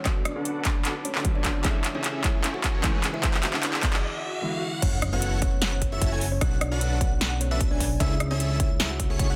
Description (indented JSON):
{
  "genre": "future bass",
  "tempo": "151 BPM",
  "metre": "4/4",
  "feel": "half-time",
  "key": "F# minor",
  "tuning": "A4 = 439 Hz",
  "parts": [
    { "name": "kalimba", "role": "melody", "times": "0.0-9.1 s", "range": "B3 to F#5", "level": "-38 LUFS", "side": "equal", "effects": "sidechain pumping, dub echo" },
    { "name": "soft round pluck", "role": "accompaniment", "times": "0.0-4.8 s", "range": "C#3 to F#4", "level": "-39 LUFS", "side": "equal", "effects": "chorus, cassette tape, sidechain pumping, digital delay" },
    { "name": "airy breathy pad", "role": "sustained chords", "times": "0.0-4.0 s", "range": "G#4 to D6", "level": "-45 LUFS", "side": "equal", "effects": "none" },
    { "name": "fat analog bass", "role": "bass", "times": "0.0-9.4 s", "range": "E1 to C#2", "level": "-32 LUFS", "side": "equal", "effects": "sidechain pumping, high-pass filter" },
    { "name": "riser, swell and impact", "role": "sound effects", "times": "1.0-6.4 s", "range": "none", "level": "-38 LUFS", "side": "equal", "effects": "none" },
    { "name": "dense compressed supersaw", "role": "riff", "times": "0.1-9.4 s", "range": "C#4 to G#5", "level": "-36 LUFS", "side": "equal", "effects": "sidechain pumping, low-pass filter" },
    { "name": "big-room dance drum kit", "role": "drums", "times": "0.1-9.3 s", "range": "crash cymbal, handclaps, hi-hat, rim click, snare drum", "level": "-31 LUFS", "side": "equal", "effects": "soft clipping on snare, small room ambience" },
    { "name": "electronic kick drum", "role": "drums", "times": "0.1-9.3 s", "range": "none", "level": "-28 LUFS", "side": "equal", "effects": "small room ambience" },
    { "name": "airy dreamy lead", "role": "arpeggios", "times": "4.8-9.4 s", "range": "C#5 to G#5", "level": "-38 LUFS", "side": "equal", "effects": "chorus, sidechain pumping" }
  ],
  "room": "light reverb",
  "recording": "dense, heavily limited modern master",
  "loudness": "-25 LUFS",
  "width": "mono",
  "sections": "0.0-4.8 A section; 4.8-9.4 B section",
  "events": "build-up 0.0-4.8; drum fill 0.0-4.0; filter sweep on supersaw synth 0.0-4.8; riser 1.0-4.8; break 4.0-4.8; swell 4.0-4.8; drop 4.8-9.4; impact 4.8-6.4",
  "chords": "0.1 Bm7; 1.6 Amaj7/C#; 3.2 E7; 4.8 F#m7; 6.4 Bm7; 8.0 Amaj7/C#"
}